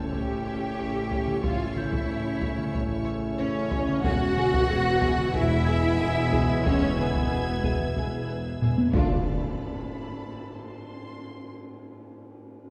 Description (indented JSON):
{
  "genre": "cinematic, suspense film score",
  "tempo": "92 BPM",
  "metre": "4/4",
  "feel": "straight",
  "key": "unclear",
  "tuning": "A4 = 441 Hz",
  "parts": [
    { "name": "warm symphonic violin section", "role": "second line", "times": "0.0-9.3 s", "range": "B4 to G5", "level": "-37 LUFS", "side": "equal", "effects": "none" },
    { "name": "rich symphonic viola section", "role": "accompaniment", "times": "0.0-9.3 s", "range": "B3 to G4", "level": "-36 LUFS", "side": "equal", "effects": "none" },
    { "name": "soft additive organ-like pad", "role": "sustained chords", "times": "0.0-9.3 s", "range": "C#4 to E5", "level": "-41 LUFS", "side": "equal", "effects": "ensemble chorus, built-in reverb" },
    { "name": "warm French horn section", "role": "sustained chords", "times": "0.0-9.2 s", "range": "B3 to F4", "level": "-38 LUFS", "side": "equal", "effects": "none" },
    { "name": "warm trombone section", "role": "sustained chords", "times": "0.0-9.2 s", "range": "C#3 to A3", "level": "-37 LUFS", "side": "equal", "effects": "none" },
    { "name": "rich symphonic double bass section", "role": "bass", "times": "0.0-9.3 s", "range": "E1 to D2", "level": "-32 LUFS", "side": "equal", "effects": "none" },
    { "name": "warm symphonic cello section", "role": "bass", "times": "0.0-9.3 s", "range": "B3 to G4", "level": "-33 LUFS", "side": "equal", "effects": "none" },
    { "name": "impact", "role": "sound effects", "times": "0.0-1.4, 8.9-11.5 s", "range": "none", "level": "-39 LUFS", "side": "equal", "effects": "none" },
    { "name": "large celesta", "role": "texture", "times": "0.0-9.3 s", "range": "E5 to Eb7", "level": "-45 LUFS", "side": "equal", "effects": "none" },
    { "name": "rich symphonic violin section", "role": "texture", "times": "0.0-11.5 s", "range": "A5 to G#6", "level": "-45 LUFS", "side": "equal", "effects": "none" },
    { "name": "warm symphonic violin section", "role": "melody", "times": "0.1-9.3 s", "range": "F4 to C#5", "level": "-41 LUFS", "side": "equal", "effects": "none" },
    { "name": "solo taiko drums", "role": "drums", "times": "0.1-10.2 s", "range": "none", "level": "-31 LUFS", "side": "equal", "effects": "none" },
    { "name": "tam-tam", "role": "percussion", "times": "8.9-11.5 s", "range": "none", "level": "-42 LUFS", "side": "equal", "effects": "none" },
    { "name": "timpani", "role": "percussion", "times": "8.9-9.2 s", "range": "D3", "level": "-40 LUFS", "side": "equal", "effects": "none" }
  ],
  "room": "wet scoring stage reverb, RT60 1.8 s",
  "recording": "heard from further back in the room",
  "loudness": "-26 LUFS",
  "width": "mono",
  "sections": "0.0-9.3 A section; 9.3-11.9 B section",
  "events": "impact 0.0-1.4, 9.3-11.9; drum fill 8.6-9.3; band accent 9.3-9.9",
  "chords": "0.0 A; 4.0 E; 8.9 Dm; 9.3 Amadd9"
}